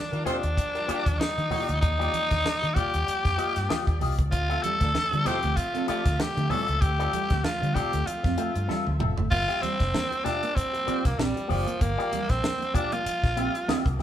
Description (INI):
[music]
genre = funk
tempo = 96 BPM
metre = 4/4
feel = swing 56% on 16ths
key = G dorian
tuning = A4 = 440 Hz
[part]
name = raspy tenor saxophone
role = melody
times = 0.0-13.9 s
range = F3 to A4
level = -28 LUFS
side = equal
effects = none
[part]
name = muted studio string section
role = sustained chords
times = 0.0-14.0 s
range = F3 to E5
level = -42 LUFS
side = equal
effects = none
[part]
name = warm horn section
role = second line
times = 0.1-6.0 s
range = D3 to C5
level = -36 LUFS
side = right 2 dB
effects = none
[part]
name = electric guitar with an envelope filter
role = accompaniment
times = 0.1-14.0 s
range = Bb3 to E5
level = -33 LUFS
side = left 5 dB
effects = spring reverb
[part]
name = vintage muted fingered electric bass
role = bass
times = 0.1-14.0 s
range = F1 to Eb3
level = -29 LUFS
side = equal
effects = none
[part]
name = tight funk drum kit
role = drums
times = 0.1-14.0 s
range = crash cymbal, hi-hat, kick drum, snare drum, toms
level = -29 LUFS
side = equal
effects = none
[part]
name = congas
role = percussion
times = 0.3-14.0 s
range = none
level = -36 LUFS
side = right 5 dB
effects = none
[part]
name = clean electric guitar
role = riff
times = 4.5-14.0 s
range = G3 to C4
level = -34 LUFS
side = right 4 dB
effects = none
[sound]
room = moderate stone room reverb, RT60 1.1 s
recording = band playing live in one room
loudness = -23 LUFS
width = side -11 dB against mid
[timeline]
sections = 0.0-9.3 A section; 9.3-14.0 B section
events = drum fill 8.7-9.3; tenor saxophone solo 9.3-14.0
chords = 0.0 Ebmaj9; 4.3 Dm7; 9.3 Gm7